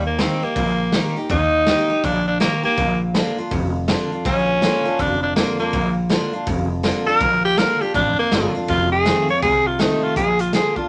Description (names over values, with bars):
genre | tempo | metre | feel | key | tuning
rockabilly | 162 BPM | 4/4 | swing 63% on 8ths | Bb major | A4 = 441 Hz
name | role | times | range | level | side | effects
raspy tenor saxophone | melody | 0.0-10.9 s | Bb3 to Db5 | -21 LUFS | equal | none
picked steel-string acoustic guitar | accompaniment | 0.0-10.9 s | F2 to G4 | -27 LUFS | equal | none
upright bass | bass | 0.0-10.8 s | F1 to Eb2 | -26 LUFS | equal | none
raw garage drum kit | drums | 0.2-10.8 s | hi-hat, kick drum, snare drum | -26 LUFS | equal | none
room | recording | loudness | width
moderate studio reverb, RT60 0.7 s | none | -19 LUFS | mono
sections
0.0-10.2 A section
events
none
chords
0.0 Eb; 2.8 Bb; 8.7 F7; 10.2 Bb